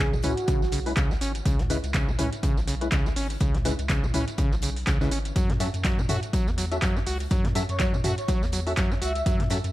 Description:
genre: acid house.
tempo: 123 BPM.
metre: 4/4.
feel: swing 56% on 16ths.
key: C# minor pentatonic.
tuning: A4 = 440 Hz.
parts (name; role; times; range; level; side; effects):
breathy flute-like synth lead; melody; 0.0-0.7, 7.7-9.4 s; F#4 to E5; -32 LUFS; right 1 dB; ensemble chorus, dub echo.
acid bass, saw; riff; 0.0-9.6 s; C#3 to F#4; -30 LUFS; equal; tube saturation, cassette tape, tape echo.
round analog bass; bass; 0.0-9.7 s; G#1 to F#2; -30 LUFS; equal; sidechain pumping.
damped 70s drum kit; drums; 0.0-9.6 s; hi-hat, snare drum; -44 LUFS; left 3 dB; high-pass filter on hats, high-pass filter on snare, high-pass filter on room.
electro analog drum machine; drums; 0.0-9.7 s; handclaps, hi-hat, tambourine, toms; -31 LUFS; equal; none.
percussive organ stab; stabs; 0.2-9.6 s; G#3 to E5; -34 LUFS; left 2 dB; ensemble chorus, tape echo.
electronic kick drum; drums; 0.5-9.4 s; none; -26 LUFS; equal; none.
room: light reverb, digital ambience.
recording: dark, warm production.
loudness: -23 LUFS.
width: side -16 dB against mid.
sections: 0.0-9.7 A section.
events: none.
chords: 0.0 C#m7; 5.4 F#m7.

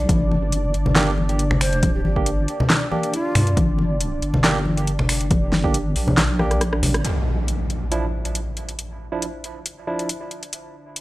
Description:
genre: deep dubstep.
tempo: 138 BPM.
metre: 4/4.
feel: swing 54% on 16ths, half-time.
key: unclear.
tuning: A4 = 440 Hz.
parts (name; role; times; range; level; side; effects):
dark analog pad; sustained chords; 0.0-11.0 s; D4 to D5; -29 LUFS; equal; chorus.
deep soft wobble bass; bass; 0.0-7.0 s; G1 to G2; -22 LUFS; equal; chorus, tube saturation.
deep house drum kit; drums; 0.1-11.0 s; finger snaps, handclaps, hi-hat, rim click, snare drum; -22 LUFS; equal; overdrive.
electronic kick drum; drums; 0.1-5.7 s; none; -22 LUFS; equal; overdrive.
congas; percussion; 0.1-6.9 s; none; -24 LUFS; left 1 dB; none.
barky tine electric piano; stabs; 1.0-10.1 s; F3 to G4; -29 LUFS; right 3 dB; auto-pan, dub echo.
breathy ney; melody; 1.6-3.6 s; F4 to C5; -30 LUFS; equal; dub echo.
impact; sound effects; 7.0-8.8 s; none; -25 LUFS; equal; none.
room: light reverb, digital ambience.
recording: dry, gritty hardware recording.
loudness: -18 LUFS.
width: side -18 dB against mid.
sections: 0.0-7.0 A section; 7.0-11.0 B section.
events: drop 0.0-7.0; drum fill 6.4-7.0; band accent 6.9; impact 7.0-8.8.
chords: 0.1 Gm; 7.0 N.C..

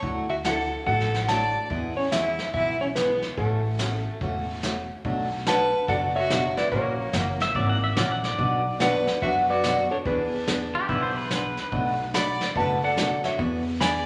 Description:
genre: country, western swing.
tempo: 144 BPM.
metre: 4/4.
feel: swing 64% on 8ths.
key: unclear.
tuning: A4 = 440 Hz.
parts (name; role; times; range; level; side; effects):
picked steel-string acoustic guitar; accompaniment; 0.0-13.9 s; B2 to A#4; -31 LUFS; equal; none.
upright bass; bass; 0.0-14.1 s; E1 to F#2; -33 LUFS; equal; none.
vintage brush drum kit; drums; 0.0-14.1 s; brushed snare drum, hi-hat, kick drum, snare drum; -34 LUFS; equal; none.
clean lap steel guitar; melody; 0.3-14.1 s; G#4 to B5; -29 LUFS; equal; none.
clear fiddle; second line; 0.3-14.1 s; A3 to D5; -33 LUFS; equal; none.
pedal steel guitar; second line; 7.4-12.0 s; E4 to F#5; -30 LUFS; equal; none.
room: wet large studio reverb, RT60 1.5 s.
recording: none.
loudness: -25 LUFS.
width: mono.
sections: 0.0-5.0 A section; 5.0-14.1 B section.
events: none.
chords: 0.0 Dadd9; 1.7 E; 3.4 A6; 5.0 Bm7; 6.7 F#7; 8.4 Bm; 10.1 E7; 11.7 Bm7; 13.4 E7.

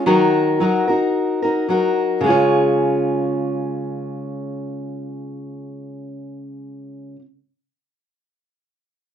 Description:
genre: pop.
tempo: 111 BPM.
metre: 4/4.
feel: swing 55% on 16ths.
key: Db major.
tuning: A4 = 442 Hz.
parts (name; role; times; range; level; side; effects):
fingerpicked steel-string acoustic guitar; solo; 0.0-7.3 s; Db3 to Db5; -18 LUFS; equal; none.
room: wet small room reverb, RT60 0.5 s.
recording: rough home demo mix.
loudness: -17 LUFS.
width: side -9 dB against mid.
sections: 0.0-2.2 A section; 2.2-6.6 B section.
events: none.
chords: 0.1 Ebm; 2.2 Db.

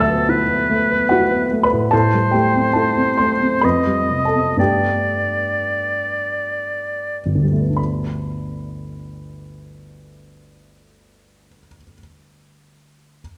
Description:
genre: classical, impressionist duo for oboe and grand piano.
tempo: 52-74 BPM.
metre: 3/4.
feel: rubato.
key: G major.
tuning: A4 = 441 Hz.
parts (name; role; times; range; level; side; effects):
warm oboe; melody; 0.0-7.2 s; A4 to Eb5; -22 LUFS; equal; none.
dark baby grand piano; accompaniment; 0.0-13.2 s; G1 to F#6; -20 LUFS; equal; none.
room: moderate recital hall reverb, RT60 1.9 s.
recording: none.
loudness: -18 LUFS.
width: mono.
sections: 0.0-7.8 A section; 7.8-11.0 B section.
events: slowing down 0.7-7.8.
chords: 0.0 D69; 1.9 Am7; 3.6 F9; 4.6 Gadd9.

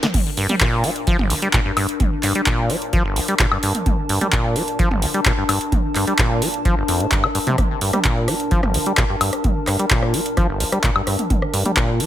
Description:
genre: acid house.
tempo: 129 BPM.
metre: 4/4.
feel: straight.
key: unclear.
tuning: A4 = 439 Hz.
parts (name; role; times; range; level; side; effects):
acid bass, saw; riff; 0.0-12.1 s; G1 to G3; -21 LUFS; equal; tube saturation, sidechain pumping, ping-pong delay.
electro analog drum machine; drums; 0.0-12.1 s; crash cymbal, handclaps, hi-hat, rim click, snare drum, toms, woodblock; -21 LUFS; equal; none.
warbly tape-like pad; texture; 0.0-12.1 s; D4 to A5; -26 LUFS; left 2 dB; chorus, built-in reverb, sidechain pumping.
electronic kick drum; drums; 0.1-11.9 s; none; -21 LUFS; equal; none.
room: light reverb.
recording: none.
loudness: -16 LUFS.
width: side -12 dB against mid.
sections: 0.0-12.1 A section.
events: fade-in on ambient pad 0.0-12.1.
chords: 0.0 Gm.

